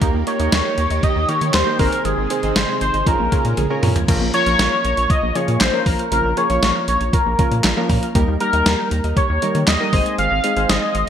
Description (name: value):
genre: synth-pop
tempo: 118 BPM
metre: 4/4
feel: straight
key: Bb dorian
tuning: A4 = 440 Hz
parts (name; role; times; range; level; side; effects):
- warm analog keys; accompaniment; 0.0-11.1 s; F3 to Eb5; -24 LUFS; right 1 dB; chorus
- soft string machine; sustained chords; 0.0-4.1 s; Bb2 to G4; -29 LUFS; equal; ensemble chorus
- warbly dusty pluck; arpeggios; 0.0-11.0 s; Db3 to Ab6; -29 LUFS; equal; chorus, phaser, digital delay
- rubbery square bass; bass; 0.0-11.0 s; Ab1 to Eb3; -22 LUFS; equal; none
- clean 12-bit digital drum machine; drums; 0.0-11.1 s; crash cymbal, handclaps, hi-hat, kick drum, snare drum, toms; -20 LUFS; equal; gated reverb
- octave-doubled lead; melody; 0.3-11.1 s; Ab4 to F5; -20 LUFS; left 1 dB; chorus, phaser, digital delay
room: moderate lush hall reverb, RT60 1.7 s, digital ambience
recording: bright 1980s-style digital production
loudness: -15 LUFS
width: side -9 dB against mid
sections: 0.0-4.1 A section; 4.1-11.1 A section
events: drum fill 3.6-4.1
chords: 0.0 Eb; 1.8 Ab; 3.1 Bbm7; 8.2 Eb; 9.9 Ab